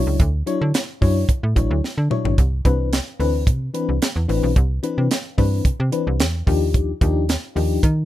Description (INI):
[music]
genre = early-eighties boogie funk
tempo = 110 BPM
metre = 4/4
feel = straight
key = C major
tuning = A4 = 440 Hz
[part]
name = FM electric piano with tremolo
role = accompaniment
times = 0.0-7.8 s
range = E3 to C#5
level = -23 LUFS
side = left 5 dB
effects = phaser, plate reverb
[part]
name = slap-like FM bass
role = bass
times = 0.0-8.1 s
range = A1 to Eb3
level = -20 LUFS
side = equal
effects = none
[part]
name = tight funk drum kit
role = drums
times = 0.2-8.0 s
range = handclaps, hi-hat, kick drum, snare drum, toms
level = -20 LUFS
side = right 1 dB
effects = none
[sound]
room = little or no reverb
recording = rough home demo mix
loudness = -17 LUFS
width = side -14 dB against mid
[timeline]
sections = 0.0-2.4 A section; 2.4-8.1 B section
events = drum fill 1.8-2.4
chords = 0.0 Dmaj9; 2.4 Cmaj9; 6.5 Ebmaj9